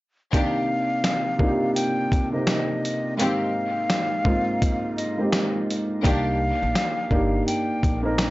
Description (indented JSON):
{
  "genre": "hip hop, boom-bap hip-hop",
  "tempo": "84 BPM",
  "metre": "4/4",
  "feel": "swing 62% on 16ths",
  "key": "C minor",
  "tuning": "A4 = 442 Hz",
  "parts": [
    { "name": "breathy mellow silver concert flute", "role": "melody", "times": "0.3-8.3 s", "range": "Eb5 to G5", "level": "-28 LUFS", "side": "left 1 dB", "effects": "high-pass filter, low-pass filter, tape echo" },
    { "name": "dark upright piano", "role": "accompaniment", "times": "0.3-8.3 s", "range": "Ab2 to Bb4", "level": "-24 LUFS", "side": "right 1 dB", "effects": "high-pass filter, low-pass filter" },
    { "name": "warm studio string section", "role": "stabs", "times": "0.3-6.3 s", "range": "Eb3 to G4", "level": "-31 LUFS", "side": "left 1 dB", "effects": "high-pass filter, low-pass filter, tape echo" },
    { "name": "dusty soul sampler-style drum kit", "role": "drums", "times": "0.3-8.3 s", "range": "hi-hat, kick drum, snare drum", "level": "-24 LUFS", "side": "equal", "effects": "none" },
    { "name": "upright bass", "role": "bass", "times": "6.0-8.3 s", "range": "G1 to C2", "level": "-27 LUFS", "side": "equal", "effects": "none" }
  ],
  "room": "little or no reverb",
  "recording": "dry, gritty hardware recording, transformer saturation, nothing above 7.7 kHz",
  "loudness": "-21 LUFS",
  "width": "side -18 dB against mid",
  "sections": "0.3-8.3 A section",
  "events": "none",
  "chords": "0.3 Cm9; 3.2 Abmaj9; 6.0 Cm9"
}